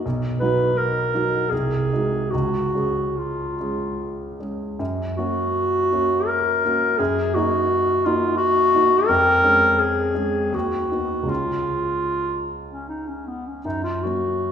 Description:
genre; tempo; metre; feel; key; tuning
classical, romantic duo for clarinet and grand piano; 69-89 BPM; 3/4; rubato; F# major; A4 = 440 Hz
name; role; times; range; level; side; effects
mellow clarinet; melody; 0.0-14.5 s; B3 to B4; -20 LUFS; left 1 dB; none
dark grand piano; accompaniment; 0.0-14.5 s; B1 to G#4; -24 LUFS; right 1 dB; none
room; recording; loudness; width
wet recital hall reverb, RT60 1.6 s; recorded in a church or concert hall; -19 LUFS; side -8 dB against mid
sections
0.0-4.8 A section; 4.8-14.5 B section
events
none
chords
0.0 B; 1.5 G#7/B#; 2.3 C#; 4.8 F#; 7.0 D#m/F#; 9.1 C#/E#; 10.5 B/D#; 11.3 C#; 13.6 F#

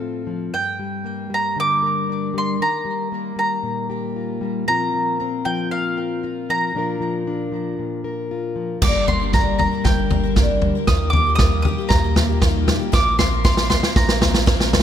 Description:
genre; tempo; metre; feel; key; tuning
indie folk with a building arrangement; 116 BPM; 4/4; straight; Bb major; A4 = 440 Hz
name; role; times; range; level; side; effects
mandolin; melody; 0.0-14.4 s; F5 to Eb6; -23 LUFS; right 1 dB; digital delay
fingerpicked plugged-in steel-string acoustic guitar; accompaniment; 0.0-14.8 s; G2 to Bb4; -25 LUFS; left 3 dB; none
picked twelve-string acoustic guitar; accompaniment; 8.8-14.8 s; G2 to Bb4; -27 LUFS; left 4 dB; none
pure sine sub bass; bass; 8.8-14.8 s; G1 to Eb2; -23 LUFS; right 1 dB; none
natural country drum kit; drums; 8.8-14.8 s; crash cymbal, kick drum, snare drum, toms; -18 LUFS; equal; none
room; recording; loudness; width
light reverb; none; -18 LUFS; side -9 dB against mid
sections
0.0-8.8 A section; 8.8-14.8 B section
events
build-up 8.8-14.8; drum fill 8.8-14.8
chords
0.0 F/A; 0.5 Gm; 2.6 Ebadd9; 4.7 Bbsus2; 6.8 Bb; 8.8 Gm; 10.9 Ebadd9; 12.9 Bbsus2

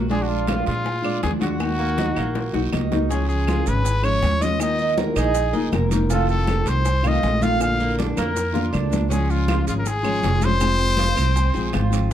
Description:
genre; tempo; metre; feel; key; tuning
latin, Cuban son and guajira; 160 BPM; 4/4; straight; Eb minor; A4 = 440 Hz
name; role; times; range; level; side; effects
nylon-string guitar; accompaniment; 0.0-12.1 s; C3 to Bb4; -26 LUFS; left 3 dB; none
Cuban tres; arpeggios; 0.0-12.1 s; Bb3 to F5; -28 LUFS; right 7 dB; none
upright bass; bass; 0.0-12.1 s; F1 to Bb2; -23 LUFS; right 1 dB; none
bright trumpet; melody; 0.1-11.9 s; F4 to F5; -25 LUFS; left 2 dB; none
bongos; percussion; 0.1-11.9 s; none; -33 LUFS; left 4 dB; none
congas; percussion; 0.1-11.9 s; none; -28 LUFS; equal; none
guiro; percussion; 0.1-12.1 s; none; -39 LUFS; right 7 dB; none
claves; percussion; 0.5-11.9 s; none; -35 LUFS; right 5 dB; none
maracas; percussion; 3.1-12.1 s; none; -38 LUFS; right 9 dB; none
room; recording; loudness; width
light reverb; dark, warm production; -18 LUFS; side -10 dB against mid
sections
0.0-12.1 A section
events
drum fill 2.4-3.1, 8.2-9.1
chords
0.1 Bb7; 1.6 Ebm; 3.1 Db; 4.6 Ebsus2; 6.1 F7; 7.6 Bb; 9.1 Db; 10.6 Fm

